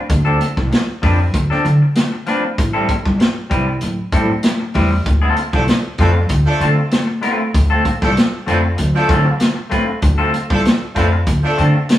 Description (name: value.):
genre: funk.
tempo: 97 BPM.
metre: 4/4.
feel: straight.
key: D dorian.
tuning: A4 = 440 Hz.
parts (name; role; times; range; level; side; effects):
clean electric guitar; accompaniment; 0.1-11.9 s; F3 to B4; -20 LUFS; left 2 dB; none.
upright bass; bass; 0.1-11.7 s; G1 to D3; -17 LUFS; equal; none.
vintage drum kit; drums; 0.1-12.0 s; hi-hat, kick drum, snare drum; -18 LUFS; equal; none.
congas; percussion; 0.1-12.0 s; none; -25 LUFS; right 1 dB; none.
clear horn section; second line; 5.5-11.6 s; F3 to A4; -20 LUFS; right 1 dB; none.
room: wet stone room reverb, RT60 1.0 s.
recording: band playing live in one room, vinyl crackle, small room ambience.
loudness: -13 LUFS.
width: side -13 dB against mid.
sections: 0.0-12.0 A section.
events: none.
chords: 0.0 Dm7; 2.6 Am7; 5.1 Dm7.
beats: | 0.10 0.72 1.34 1.96 | 2.58 3.20 3.82 4.44 | 5.06 5.68 6.30 6.92 | 7.54 8.17 8.79 9.41 | 10.03 10.65 11.27 11.89.